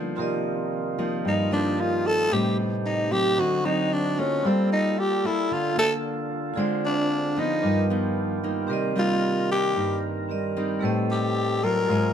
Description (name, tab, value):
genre	bossa nova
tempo	113 BPM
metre	4/4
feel	straight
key	G minor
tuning	A4 = 440 Hz
part	nylon-string guitar	accompaniment	0.0-12.1 s	G2 to A4	-26 LUFS	left 1 dB	none
part	vibraphone with medium hard mallets	accompaniment	0.0-12.1 s	G3 to Eb5	-31 LUFS	right 4 dB	none
part	pipe organ, flutes	sustained chords	0.2-12.1 s	C3 to Bb4	-33 LUFS	right 3 dB	none
part	growling tenor saxophone	melody	1.3-12.1 s	B3 to Bb4	-24 LUFS	left 1 dB	none
room	light reverb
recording	none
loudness	-22 LUFS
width	side -8 dB against mid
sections	0.0-12.1 A section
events	tenor saxophone solo 0.0-12.1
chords	0.2 Cm11; 2.3 Am7b5; 3.4 D7b9; 4.4 Gm9; 6.6 Dm7b5; 7.6 G7alt; 8.7 Cm7; 10.8 Am7b5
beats	| 0.18 0.72 1.25 1.78 | 2.31 2.85 3.38 3.91 | 4.44 4.98 5.51 6.04 | 6.57 7.10 7.64 8.17 | 8.70 9.23 9.76 10.29 | 10.83 11.36 11.89